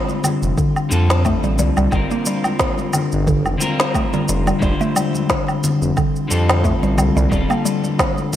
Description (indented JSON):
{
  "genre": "organic downtempo",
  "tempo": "89 BPM",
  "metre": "4/4",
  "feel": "swing 55% on 16ths",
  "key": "G minor",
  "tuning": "A4 = 440 Hz",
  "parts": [
    { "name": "electric guitar at the edge of break-up", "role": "accompaniment", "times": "0.0-8.4 s", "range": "D3 to C5", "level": "-22 LUFS", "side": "left 2 dB", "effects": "lush chorus, sidechain pumping, digital delay" },
    { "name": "mallet-like synth pluck", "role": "arpeggios", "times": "0.0-8.3 s", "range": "D3 to Bb3", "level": "-22 LUFS", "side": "equal", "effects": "chorus, phaser, digital delay" },
    { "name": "electronic shaker, woodblock and snare drum", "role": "drums", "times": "0.1-8.4 s", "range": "none", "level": "-22 LUFS", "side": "equal", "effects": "small room ambience, gated reverb" },
    { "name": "congas", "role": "percussion", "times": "0.1-8.4 s", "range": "none", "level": "-27 LUFS", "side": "left 1 dB", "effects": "none" },
    { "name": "smooth synth bass", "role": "bass", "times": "0.4-7.4 s", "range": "Eb1 to F2", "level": "-18 LUFS", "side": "equal", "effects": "sidechain pumping" },
    { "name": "electronic kick drum", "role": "drums", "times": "0.6-8.1 s", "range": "none", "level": "-23 LUFS", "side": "equal", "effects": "overdrive, small room ambience" }
  ],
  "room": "moderate plate reverb, RT60 2.2 s",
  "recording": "bright 1980s-style digital production",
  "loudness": "-15 LUFS",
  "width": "side -11 dB against mid",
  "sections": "0.0-8.4 A section",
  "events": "none",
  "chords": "0.0 Dm/F; 1.9 Gm; 4.6 F; 7.3 Eb (rootless)"
}